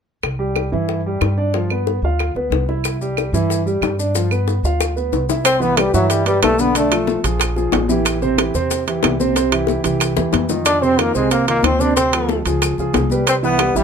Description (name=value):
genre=Afro-Cuban jazz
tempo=184 BPM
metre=4/4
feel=straight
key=C major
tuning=A4 = 441 Hz
part: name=upright bass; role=bass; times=0.2-13.8 s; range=A1 to G2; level=-22 LUFS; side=equal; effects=none
part: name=bongos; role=percussion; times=0.2-13.8 s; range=none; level=-24 LUFS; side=left 10 dB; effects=none
part: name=claves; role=percussion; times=0.2-13.8 s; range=none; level=-26 LUFS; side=right 6 dB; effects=none
part: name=warm concert grand piano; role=accompaniment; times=0.4-13.8 s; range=C3 to F5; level=-20 LUFS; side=right 3 dB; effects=none
part: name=maracas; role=percussion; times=2.8-13.8 s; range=none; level=-30 LUFS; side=left 7 dB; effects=none
part: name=brilliant trombone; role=melody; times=5.4-7.2, 10.7-13.8 s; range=F#3 to D4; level=-18 LUFS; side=equal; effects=none
part: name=congas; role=percussion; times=5.4-13.8 s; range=none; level=-25 LUFS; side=left 9 dB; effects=none
part: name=timbales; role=percussion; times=5.4-13.8 s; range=none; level=-22 LUFS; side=right 9 dB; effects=none
part: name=warm tenor saxophone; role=second line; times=5.5-7.2, 10.7-13.8 s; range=F#4 to D5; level=-23 LUFS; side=left 7 dB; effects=none
room=light reverb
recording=none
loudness=-15 LUFS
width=side -6 dB against mid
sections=0.2-5.5 A section; 5.5-13.8 B section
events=drum fill 4.8-5.5, 10.2-10.7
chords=0.2 C; 1.5 G7; 2.8 C; 4.1 G7; 5.5 Cmaj9; 6.8 Bm7b5; 7.4 Bb5; 8.1 Am7; 9.4 C; 10.7 F5; 12.0 Dm7; 12.6 Db7; 13.3 Cmaj7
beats=| 0.24 0.56 0.89 1.22 | 1.54 1.87 2.19 2.52 | 2.85 3.17 3.50 3.82 | 4.15 4.47 4.80 5.13 | 5.45 5.78 6.10 6.43 | 6.75 7.08 7.41 7.73 | 8.06 8.38 8.71 9.04 | 9.36 9.69 10.01 10.34 | 10.66 10.99 11.31 11.64 | 11.96 12.29 12.62 12.94 | 13.27 13.59